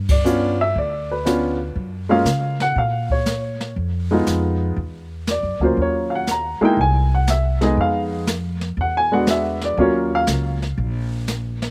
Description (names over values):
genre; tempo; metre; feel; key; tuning
jazz piano trio; 120 BPM; 4/4; swing 68% on 8ths; Eb minor; A4 = 441 Hz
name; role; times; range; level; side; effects
upright bass; bass; 0.0-11.7 s; Bb1 to Db3; -26 LUFS; equal; none
warm upright piano; melody; 0.1-10.6 s; F#3 to Bb5; -21 LUFS; equal; slapback echo
jazz brush drum kit; drums; 0.1-11.7 s; brushed snare drum, hi-hat, kick drum, ride cymbal, snare drum; -26 LUFS; equal; none
room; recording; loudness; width
little or no reverb; recorded outdoors, with no room sound; -20 LUFS; mono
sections
0.0-11.7 A section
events
band accent 0.0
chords
0.0 G7#11; 1.8 Gbmaj7; 3.8 Fm7b5; 4.8 Esus2; 5.8 Ebm9; 6.8 Caug; 7.8 Fm7b5; 8.8 E9; 9.8 Ebm9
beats
0.26 0.76 1.26 | 1.76 2.26 2.77 3.27 | 3.77 4.27 4.77 5.27 | 5.78 6.28 6.78 7.28 | 7.78 8.28 8.78 9.28 | 9.79 10.29 10.79 11.29